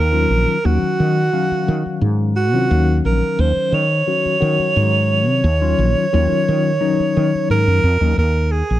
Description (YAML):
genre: electric jazz fusion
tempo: 88 BPM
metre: 4/4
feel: straight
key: Eb dorian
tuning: A4 = 440 Hz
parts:
  - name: warm alto saxophone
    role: melody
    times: 0.0-8.8 s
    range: Gb4 to Db5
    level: -19 LUFS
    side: right 3 dB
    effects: slapback echo
  - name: woody fretless electric bass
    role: bass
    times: 0.0-8.8 s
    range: Bb1 to Eb3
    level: -17 LUFS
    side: equal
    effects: wide subtle chorus
  - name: tine electric piano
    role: accompaniment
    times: 0.1-8.2 s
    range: Eb3 to F5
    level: -21 LUFS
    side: left 6 dB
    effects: medium tremolo, phaser
room: studio reverb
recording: dry, close 1970s-style studio recording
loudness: -14 LUFS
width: side -14 dB against mid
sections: 0.0-8.2 A section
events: none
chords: 0.0 Ebm9; 8.2 Ebsus4